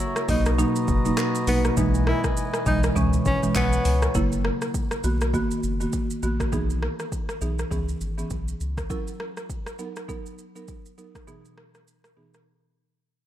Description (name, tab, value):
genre	afrobeats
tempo	101 BPM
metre	4/4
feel	swing 58% on 16ths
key	unclear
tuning	A4 = 438 Hz
part	hand-pumped harmonium	sustained chords	0.0-4.1 s	E3 to A#5	-32 LUFS	equal	none
part	deep house drum kit	drums	0.2-12.5 s	handclaps, hi-hat, kick drum, rim click, shaker	-28 LUFS	equal	overdrive
part	breathy tenor saxophone	melody	0.3-4.0 s	B3 to E4	-29 LUFS	left 1 dB	analog delay
part	buzzing marimba with medium mallets	accompaniment	0.3-12.4 s	B2 to A#4	-27 LUFS	right 1 dB	none
part	round analog bass	bass	0.3-8.8 s	F#1 to C#2	-26 LUFS	equal	none
room	moderate plate reverb, RT60 2.2 s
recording	dreamy mix soaked in reverb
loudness	-22 LUFS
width	side -12 dB against mid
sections	0.0-4.2 A section; 4.2-13.3 B section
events	fade-out 4.2-13.3; break 12.5-13.3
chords	0.3 Bmaj7; 1.8 Emaj7/B; 3.0 C#m7; 4.2 F#7; 5.0 Bmaj7; 6.5 Emaj7/B; 7.7 C#m7; 8.9 F#7; 9.8 Bmaj7; 11.3 Emaj7/B; 12.5 N.C.